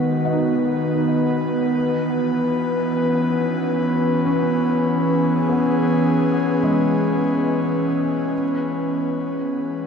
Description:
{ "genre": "ambient", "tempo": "73 BPM", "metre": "4/4", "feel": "straight", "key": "unclear", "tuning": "A4 = 440 Hz", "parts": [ { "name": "airy breathy pad", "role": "sustained chords", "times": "0.0-9.9 s", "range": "D#3 to B4", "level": "-18 LUFS", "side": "equal", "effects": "chorus" }, { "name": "felt-muted upright piano", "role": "arpeggios", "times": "0.0-8.4 s", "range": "G#3 to F#5", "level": "-27 LUFS", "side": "left 1 dB", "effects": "ping-pong delay" } ], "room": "wet cathedral reverb, RT60 6.5 s", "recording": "in a vast, echoing space", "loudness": "-18 LUFS", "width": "side -6 dB against mid", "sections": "0.0-9.9 A section", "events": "fade-in on felt piano 0.0-9.9; fade-out 6.1-9.9", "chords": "0.0 B; 1.7 Eadd9" }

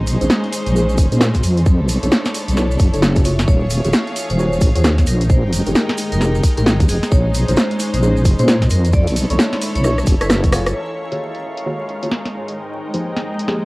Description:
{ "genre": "UK garage, two-step garage", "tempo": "132 BPM", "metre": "4/4", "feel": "swing 62% on 16ths", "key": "unclear", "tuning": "A4 = 440 Hz", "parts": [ { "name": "clear studio violin section", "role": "sustained chords", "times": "0.0-13.7 s", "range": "Ab3 to G5", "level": "-29 LUFS", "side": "equal", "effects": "sidechain pumping, low-pass filter, cassette tape" }, { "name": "deep soft wobble bass", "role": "bass", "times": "0.0-10.7 s", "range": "Eb1 to Bb2", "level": "-16 LUFS", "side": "equal", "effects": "chorus, tube saturation" }, { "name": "granular cloud pad", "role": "texture", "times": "0.0-13.7 s", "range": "F3 to C#5", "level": "-26 LUFS", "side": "equal", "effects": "built-in reverb, sidechain pumping, cassette tape" }, { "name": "punchy analog drum machine", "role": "drums", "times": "0.1-13.6 s", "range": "hi-hat, rim click, snare drum", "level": "-19 LUFS", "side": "equal", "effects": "overdrive, low-pass filter on snare, studio reverb, cassette tape, low-pass filter on cymbals, low-pass filter on hats" }, { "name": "maracas", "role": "percussion", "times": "0.1-10.7 s", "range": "none", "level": "-33 LUFS", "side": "right 5 dB", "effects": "none" }, { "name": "deep mellow chord stab", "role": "stabs", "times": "0.2-13.7 s", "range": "Eb3 to C#5", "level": "-24 LUFS", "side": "equal", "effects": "chorus, cassette tape, tape echo" }, { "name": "electronic kick drum", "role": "drums", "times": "1.0-10.5 s", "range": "none", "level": "-14 LUFS", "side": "equal", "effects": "studio reverb, cassette tape" }, { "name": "vibraphone with hard mallets", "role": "melody", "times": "3.5-10.7 s", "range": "Ab4 to D5", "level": "-27 LUFS", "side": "equal", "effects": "cassette tape, tape echo" } ], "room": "light reverb, digital ambience", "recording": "home recording on cassette, vinyl crackle", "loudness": "-14 LUFS", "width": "side -23 dB against mid", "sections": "0.0-10.8 A section; 10.8-13.7 B section", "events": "filter sweep on synth stab 0.0-10.8, 10.8-13.7; drum fill 9.8-10.8", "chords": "0.0 Bbm11; 1.7 Bm11; 3.5 Ebm11; 5.3 Fm11; 7.1 Bbm11; 8.9 Bm11; 10.8 Ebm11; 12.6 Fm11" }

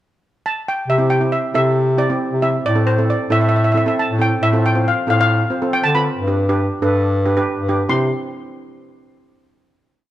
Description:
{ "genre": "calypso", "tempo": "136 BPM", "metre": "4/4", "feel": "straight", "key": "C major", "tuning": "A4 = 439 Hz", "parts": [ { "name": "steel pan", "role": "melody", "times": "0.5-8.1 s", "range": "C5 to C6", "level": "-19 LUFS", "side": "equal", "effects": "none" }, { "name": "warm bass clarinet", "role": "bass", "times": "0.9-8.1 s", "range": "G2 to D3", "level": "-18 LUFS", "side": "equal", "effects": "none" }, { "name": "steel pan", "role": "accompaniment", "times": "1.0-8.1 s", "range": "C4 to C5", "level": "-21 LUFS", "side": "right 2 dB", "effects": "none" } ], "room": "light reverb", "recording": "close, detailed microphones", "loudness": "-15 LUFS", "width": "side -13 dB against mid", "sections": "0.0-0.9 pickup bar; 0.9-7.9 verse; 7.9-9.7 final chord", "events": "none", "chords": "0.0 N.C.; 0.9 C; 2.6 Am; 4.4 F/A; 6.2 G; 7.9 C" }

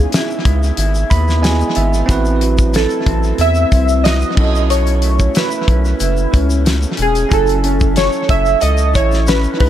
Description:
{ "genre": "indie pop, bedroom pop", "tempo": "92 BPM", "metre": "4/4", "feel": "straight", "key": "unclear", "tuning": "A4 = 440 Hz", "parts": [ { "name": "warm analog keys", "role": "melody", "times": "0.0-9.7 s", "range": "G#4 to E5", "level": "-18 LUFS", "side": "right 1 dB", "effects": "wide subtle chorus, tape echo" }, { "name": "bell-like tine electric piano", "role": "accompaniment", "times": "0.0-9.7 s", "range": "B3 to B5", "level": "-22 LUFS", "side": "right 6 dB", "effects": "medium stereo tremolo, tape echo" }, { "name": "electric guitar through a small old amp", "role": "accompaniment", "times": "0.0-9.7 s", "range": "A2 to A4", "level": "-22 LUFS", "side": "left 1 dB", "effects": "analog chorus, vibrato effect, tape echo" }, { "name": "round analog bass", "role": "bass", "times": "0.0-9.7 s", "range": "E1 to E2", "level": "-15 LUFS", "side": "equal", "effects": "none" }, { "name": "damped 70s drum kit", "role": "drums", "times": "0.1-9.7 s", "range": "crash cymbal, hi-hat, kick drum, snare drum", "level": "-17 LUFS", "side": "left 1 dB", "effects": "tape echo" }, { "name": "tube shaker", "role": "percussion", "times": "0.1-9.6 s", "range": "none", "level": "-32 LUFS", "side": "left 6 dB", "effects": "none" } ], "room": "small room ambience", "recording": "echo-heavy mix", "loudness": "-12 LUFS", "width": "side -11 dB against mid", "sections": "0.0-9.7 A section", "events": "tine electric piano fill 0.8-2.1", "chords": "0.0 C#m7; 2.1 Am6; 4.4 B9sus4; 7.3 F#m7" }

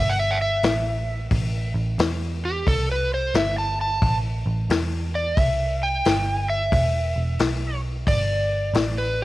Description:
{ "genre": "blues rock power trio and southern rock", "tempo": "89 BPM", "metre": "4/4", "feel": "swing 65% on 8ths", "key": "unclear", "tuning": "A4 = 445 Hz", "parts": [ { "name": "overdriven slide guitar", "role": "melody", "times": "0.0-9.2 s", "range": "G4 to A5", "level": "-24 LUFS", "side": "equal", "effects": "none" }, { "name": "vintage muted picked electric bass", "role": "bass", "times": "0.0-9.2 s", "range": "E1 to E2", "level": "-25 LUFS", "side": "right 1 dB", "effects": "none" }, { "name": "vintage drum kit", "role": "drums", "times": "0.6-9.0 s", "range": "hi-hat, kick drum, snare drum", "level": "-25 LUFS", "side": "left 2 dB", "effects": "none" } ], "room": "small room ambience", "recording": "1960s-style stereo", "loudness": "-20 LUFS", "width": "side -17 dB against mid", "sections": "0.0-9.2 A section", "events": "electric slide guitar solo 0.0-9.2", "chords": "0.0 Emadd9/G; 0.6 A5; 2.0 Em; 2.7 Amadd9/C; 3.3 Emadd11/G; 4.0 N.C.; 4.7 Dsus2/E; 5.4 C5; 6.0 Em/G; 6.7 N.C.; 7.4 Bsus4; 8.1 G5" }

